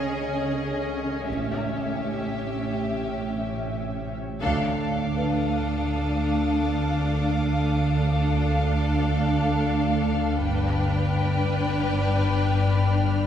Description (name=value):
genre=cinematic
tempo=free time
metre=none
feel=none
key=D dorian from 4.4 s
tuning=A4 = 440 Hz
part: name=rich symphonic violin section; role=melody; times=0.0-13.3 s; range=Eb5 to G5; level=-33 LUFS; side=left 3 dB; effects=none
part: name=clear symphonic violin section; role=second line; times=0.0-13.3 s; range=G4 to B4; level=-34 LUFS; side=left 2 dB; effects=none
part: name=rich symphonic viola section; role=accompaniment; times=0.0-13.3 s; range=Db4 to D4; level=-31 LUFS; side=equal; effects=none
part: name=ethereal airy pad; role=sustained chords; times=0.0-13.3 s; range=D4 to B5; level=-31 LUFS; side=left 1 dB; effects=ensemble chorus, built-in reverb
part: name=warm studio cello section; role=bass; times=0.0-13.3 s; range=D2 to Db3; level=-28 LUFS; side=equal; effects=none
part: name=metallic inharmonic drone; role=drone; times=0.0-13.3 s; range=G1 to D2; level=-30 LUFS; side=right 1 dB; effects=chorus, built-in reverb
part: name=felt-muted upright piano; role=texture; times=0.0-10.5 s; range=B4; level=-43 LUFS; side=equal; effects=none
part: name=clear symphonic double bass section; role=bass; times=1.3-13.3 s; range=G1 to D2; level=-28 LUFS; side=right 1 dB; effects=none
part: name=rich studio violin section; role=texture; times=4.4-13.3 s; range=B5 to F6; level=-40 LUFS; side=left 3 dB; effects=none
room=wet scoring stage reverb, RT60 2.0 s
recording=heard from further back in the room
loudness=-22 LUFS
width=side -9 dB against mid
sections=0.0-4.4 A section; 4.4-13.3 B section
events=band accent 4.4-5.2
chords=0.0 Dbsus2; 1.3 A7; 4.4 Dm; 10.5 G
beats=free time